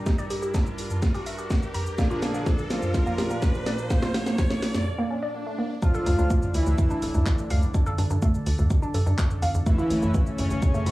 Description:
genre	melodic techno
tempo	125 BPM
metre	4/4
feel	straight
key	D harmonic minor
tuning	A4 = 439 Hz
part	evolving wavetable pad	sustained chords	0.0-10.9 s	G2 to E5	-36 LUFS	right 1 dB	chorus, built-in reverb, sidechain pumping, cassette tape
part	brassy analog pad	stabs	0.0-10.9 s	A2 to D4	-34 LUFS	left 1 dB	chorus, sidechain pumping, cassette tape, tape echo
part	riser and swell	sound effects	0.0-5.8 s	none	-35 LUFS	equal	none
part	woody wave-folded pluck	arpeggios	0.1-10.9 s	E3 to Bb5	-31 LUFS	right 1 dB	chorus, sidechain pumping, cassette tape, tape echo
part	electronic kick drum	drums	0.1-10.7 s	none	-24 LUFS	equal	cassette tape
part	house drum kit	drums	0.1-10.9 s	handclaps, hi-hat, shaker, snare drum, toms	-29 LUFS	equal	cassette tape
part	soft supersaw	melody	2.0-10.9 s	C#3 to F4	-31 LUFS	equal	cassette tape, tape echo
part	airy dreamy lead	second line	5.8-10.9 s	C#5 to F5	-39 LUFS	equal	chorus, sidechain pumping, cassette tape, tape echo
part	tight sequencer bass	bass	6.1-10.9 s	D1 to A2	-24 LUFS	equal	sidechain pumping
room	moderate small room reverb, RT60 0.5 s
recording	home recording on cassette, small room ambience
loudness	-22 LUFS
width	side -18 dB against mid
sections	0.0-5.8 A section; 5.8-10.9 B section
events	build-up 0.0-5.8; drum fill 0.0-4.9; riser 0.0-4.9; filter sweep on synth pluck 0.0-5.8; filter sweep on analog synth pad 0.0-5.8; break 4.9-5.8; swell 4.9-5.8; drop 5.8-10.9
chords	0.0 Gm; 2.0 Bb; 5.8 Dm; 9.7 A

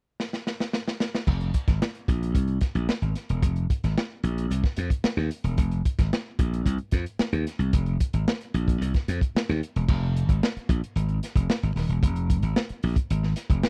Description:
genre	funk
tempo	112 BPM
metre	4/4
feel	straight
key	F minor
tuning	A4 = 440 Hz
part	crunchy breakbeat drum kit	drums	0.2-13.7 s	crash cymbal, hi-hat, kick drum, snare drum	-28 LUFS	equal	none
part	slap bass	bass	1.3-13.6 s	Eb1 to F2	-27 LUFS	equal	none
room	little or no reverb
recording	dry, close 1970s-style studio recording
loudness	-26 LUFS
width	mono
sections	0.0-1.3 A section; 1.3-9.9 B section; 9.9-13.7 C section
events	drum fill 0.2-1.3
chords	none

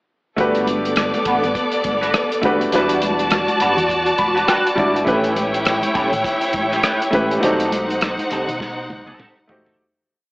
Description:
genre	lush 1970s-style soul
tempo	102 BPM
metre	4/4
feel	swing 58% on 16ths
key	unclear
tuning	A4 = 440 Hz
part	warm studio string section	second line	0.4-9.7 s	B3 to A5	-20 LUFS	equal	none
part	clear concert grand piano	accompaniment	0.4-9.8 s	F#3 to B5	-21 LUFS	equal	none
part	clean electric guitar	riff	0.4-9.8 s	G3 to B4	-24 LUFS	right 1 dB	wah, ensemble chorus
part	overdriven fingered electric bass	bass	0.4-9.7 s	E1 to B2	-32 LUFS	equal	none
part	warm soul drum kit	drums	0.4-9.8 s	hi-hat, kick drum, rim click, snare drum, toms	-24 LUFS	equal	none
part	congas	percussion	0.4-9.7 s	none	-31 LUFS	equal	none
room	moderate echo chamber reverb, RT60 2.2 s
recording	AM radio sound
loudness	-16 LUFS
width	side -26 dB against mid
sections	0.4-9.8 verse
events	grand piano fill 3.9-5.1; fade-out 7.4-9.8; drum fill 8.6-9.8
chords	0.4 Gmaj9; 2.7 Em9; 5.1 A9; 7.4 B7b9b13

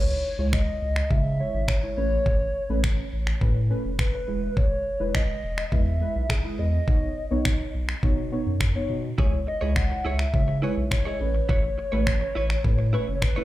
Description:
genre	dance-pop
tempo	104 BPM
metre	4/4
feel	straight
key	unclear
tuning	A4 = 440 Hz
part	hollow clarinet-like synth lead	melody	0.0-13.4 s	G#4 to F#5	-30 LUFS	equal	chorus, slapback echo, tape echo
part	deep mellow chord stab	accompaniment	0.0-13.4 s	G#3 to E5	-31 LUFS	right 1 dB	chorus, sidechain pumping, slapback echo
part	warm sub bass	bass	0.0-13.4 s	E1 to C#3	-27 LUFS	equal	sidechain pumping
part	smooth R&B drum kit	drums	0.5-13.4 s	finger snaps, kick drum	-24 LUFS	equal	none
part	direct-recorded clean electric guitar	riff	9.2-13.4 s	E4 to C#5	-34 LUFS	right 5 dB	wide subtle chorus, slapback echo
room	digital ambience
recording	live gig heard through the venue's PA, club reverb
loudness	-22 LUFS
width	side -15 dB against mid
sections	0.0-13.4 A section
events	none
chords	0.0 C#m; 2.0 Aadd9; 4.3 E; 6.9 Badd9; 9.2 C#m; 11.2 Aadd9

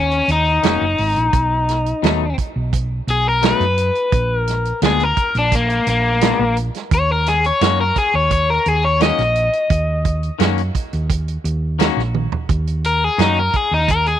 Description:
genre	straight-eighth soul blues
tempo	86 BPM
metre	4/4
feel	straight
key	Eb minor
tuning	A4 = 441 Hz
part	crunchy overdriven guitar	melody	0.0-14.2 s	Bb3 to Eb5	-17 LUFS	left 3 dB	none
part	hollow-body short-scale fingered electric bass	bass	0.0-14.2 s	F1 to F#2	-20 LUFS	right 1 dB	none
part	warm soul drum kit	drums	0.1-14.2 s	hi-hat, kick drum, snare drum, toms	-20 LUFS	right 5 dB	none
part	clean electric guitar	stabs	0.6-13.4 s	Bb2 to Gb4	-24 LUFS	left 14 dB	none
room	little or no reverb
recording	1960s-style stereo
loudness	-15 LUFS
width	side -11 dB against mid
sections	0.0-12.5 A section; 12.5-14.2 A section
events	overdriven electric guitar solo 0.0-14.2; drum fill 12.1-12.5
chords	0.0 Ebm7; 1.3 B7; 4.1 Bb7b9; 6.9 Ebm7

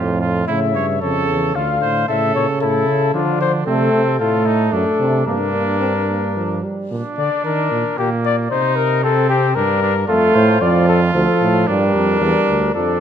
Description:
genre	classical, imitative canzona for brass ensemble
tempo	113 BPM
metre	3/4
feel	straight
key	G minor from 3.7 s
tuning	A4 = 440 Hz
part	clear trumpet	second line	0.0-13.0 s	Bb3 to C#5	-22 LUFS	right 5 dB	none
part	mellow trombone	accompaniment	0.0-6.9, 10.1-13.0 s	A2 to C4	-20 LUFS	right 3 dB	none
part	warm bass trombone	bass	0.0-13.0 s	D2 to Eb3	-20 LUFS	right 2 dB	none
part	dark trumpet	melody	0.5-13.0 s	F4 to F5	-19 LUFS	left 9 dB	none
room	wet recital hall reverb, RT60 1.4 s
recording	none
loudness	-15 LUFS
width	side -8 dB against mid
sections	0.5-6.9 A section; 6.9-13.0 B section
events	none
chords	0.5 A; 1.6 Dm; 2.1 A; 3.1 Dm; 3.7 Adim/C; 4.7 D/F#; 5.3 Gm; 6.9 Bbadd11; 8.0 Gm/Bb; 8.5 Cm; 9.6 Gm; 10.1 Dm/F; 11.1 Dm; 11.7 Gm

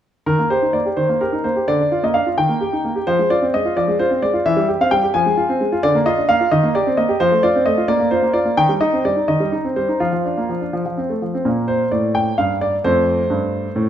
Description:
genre	classical-period piano sonatina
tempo	86 BPM (dotted quarters)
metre	6/8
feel	straight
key	Eb major, Bb major from 5.8 s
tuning	A4 = 440 Hz
part	clear concert grand piano	solo	0.3-13.9 s	F2 to Ab5	-15 LUFS	equal	none
room	moderate recital hall reverb, RT60 1.7 s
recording	minimal, uncompressed stereo recording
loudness	-15 LUFS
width	side -10 dB against mid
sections	0.3-11.4 A section; 11.4-13.9 B section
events	none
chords	0.3 Eb; 1.7 Bb/D; 2.4 Eb; 3.1 Fm; 4.4 C/E; 5.1 Fm; 5.8 Bb/D; 6.5 Cm7/Eb; 7.2 F; 7.9 Bb5; 8.6 Cm/Eb; 10.0 Bb/F; 10.7 F; 11.4 Gmadd9; 12.8 F

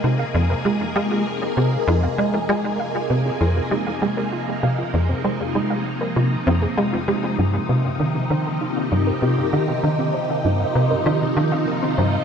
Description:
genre	ambient, sequencer-driven space music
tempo	98 BPM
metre	4/4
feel	straight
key	F minor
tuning	A4 = 438 Hz
part	phased string machine	sustained chords	0.0-12.2 s	C3 to Ab4	-23 LUFS	left 1 dB	ensemble chorus, phaser, shimmer reverb
part	soft round pluck	arpeggios	0.0-12.1 s	C4 to F5	-30 LUFS	moving between left 2 dB and right 6 dB	chorus, auto-pan, tape echo, shimmer reverb
part	tight sequencer bass	riff	0.0-12.2 s	F2 to Ab3	-20 LUFS	right 1 dB	ensemble chorus, tape echo, shimmer reverb
room	moderate plate reverb, RT60 3.0 s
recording	none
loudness	-18 LUFS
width	side -7 dB against mid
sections	0.0-12.2 A section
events	fade-in on synth arpeggio sound 0.0-12.2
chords	0.0 Fm; 7.4 Csus4

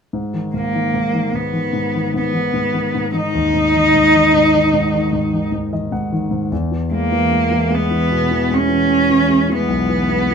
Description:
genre	acoustic folk-pop ballad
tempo	75 BPM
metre	4/4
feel	straight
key	G# minor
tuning	A4 = 440 Hz
part	warm concert grand piano	accompaniment	0.1-10.3 s	B1 to F#5	-19 LUFS	left 1 dB	none
part	warm cello	melody	0.6-10.3 s	A#3 to D#4	-16 LUFS	right 1 dB	none
room	moderate studio reverb, RT60 0.8 s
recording	minimal, uncompressed stereo recording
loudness	-14 LUFS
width	side -6 dB against mid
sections	0.1-10.3 A section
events	none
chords	0.1 G#m; 6.5 E

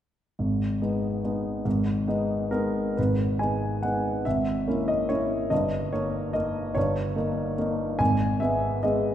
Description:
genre	classical, piano waltz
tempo	129-153 BPM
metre	3/4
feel	rubato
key	G# minor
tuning	A4 = 440 Hz
part	warm concert grand piano	solo	0.4-9.1 s	G1 to G#5	-24 LUFS	equal	none
room	wet concert hall reverb, RT60 2.0 s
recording	minimal, uncompressed stereo recording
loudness	-24 LUFS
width	side -10 dB against mid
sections	0.4-3.0 A section; 3.0-9.1 B section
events	none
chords	0.4 G#m; 4.3 A#m7b5/G#; 5.5 D#7/G; 8.0 G#m

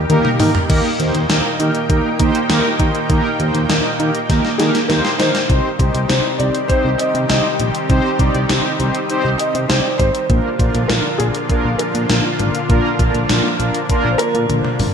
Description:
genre	synth-pop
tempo	100 BPM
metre	4/4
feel	straight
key	C minor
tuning	A4 = 440 Hz
part	felt-muted upright piano	melody	0.0-0.3, 4.6-14.7 s	Ab4 to Eb5	-22 LUFS	left 1 dB	ping-pong delay
part	lush unison pad	sustained chords	0.0-14.9 s	Bb2 to G5	-22 LUFS	equal	chorus
part	solid FM bass	bass	0.0-14.9 s	G1 to Eb3	-19 LUFS	equal	none
part	mellow synth brass	accompaniment	0.1-14.9 s	Bb3 to D5	-20 LUFS	right 1 dB	chorus
part	gated 80s digital drum machine	drums	0.1-14.9 s	crash cymbal, hi-hat, kick drum, snare drum, toms	-18 LUFS	equal	gated reverb, gated reverb snare
room	moderate lush hall reverb, RT60 2.0 s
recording	bright 1980s-style digital production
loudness	-14 LUFS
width	side -7 dB against mid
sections	0.7-5.5 A section; 5.5-14.9 B section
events	drum fill 0.1-0.7, 4.3-5.5, 14.5-14.9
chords	0.0 Eb; 5.5 Cm; 10.3 Bb

